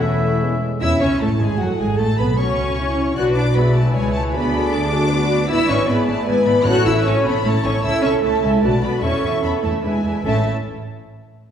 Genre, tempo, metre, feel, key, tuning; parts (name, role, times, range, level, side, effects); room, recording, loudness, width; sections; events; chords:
quick classical-period movement for symphony orchestra; 153 BPM; 3/4; straight; A major; A4 = 440 Hz
dark studio violin section; melody; 0.0-10.5 s; E5 to F#6; -27 LUFS; left 3 dB
dark studio violin section; second line; 0.0-10.5 s; E4 to E5; -25 LUFS; left 1 dB
mellow hollow flute section; second line; 0.0-0.6 s; A4; -28 LUFS; left 2 dB
warm oboe; second line; 0.0-0.6 s; E4; -29 LUFS; left 1 dB
dark studio viola section; accompaniment; 0.0-10.5 s; F#3 to G#4; -25 LUFS; equal
warm bassoon; accompaniment; 0.0-0.6 s; C#4; -34 LUFS; left 2 dB
dark French horn section; sustained chords; 0.0-10.4 s; B3 to B4; -24 LUFS; equal
warm studio cello section; bass; 0.0-10.5 s; E2 to F#4; -22 LUFS; equal
warm studio double bass section; bass; 0.0-10.5 s; E1 to E2; -22 LUFS; right 1 dB
timpani; percussion; 6.6-7.2, 10.2-10.4 s; A2; -27 LUFS; equal
wet scoring stage reverb, RT60 1.7 s; heard from further back in the room; -16 LUFS; side -8 dB against mid
0.8-10.2 A section; 10.2-11.4 B section
0.4 E; 0.8 A; 3.2 Bm; 4.3 Bm/D; 5.5 E7/G#; 6.7 A; 7.8 A/C#; 8.6 Bm; 9.0 A/E; 9.8 E7; 10.2 A